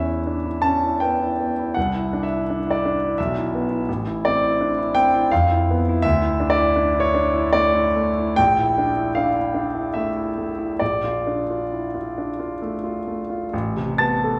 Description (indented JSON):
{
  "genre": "classical, impressionist solo piano",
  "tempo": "63-87 BPM",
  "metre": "3/4",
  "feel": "rubato",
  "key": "unclear",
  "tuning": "A4 = 439 Hz",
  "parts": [
    { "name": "clear grand piano", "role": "solo", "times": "0.0-14.4 s", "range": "A1 to A6", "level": "-21 LUFS", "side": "equal", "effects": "none" }
  ],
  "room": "moderate concert hall reverb, RT60 1.9 s",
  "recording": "small room ambience",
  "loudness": "-21 LUFS",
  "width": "mono",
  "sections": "0.0-13.5 A section",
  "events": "none",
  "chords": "0.0 Em6; 1.8 Cadd9; 3.2 Bsus4; 3.9 Am; 5.3 E5; 6.0 Dsus2; 8.4 Bbmaj7#11; 10.8 Bbmaj7; 13.5 Amadd9"
}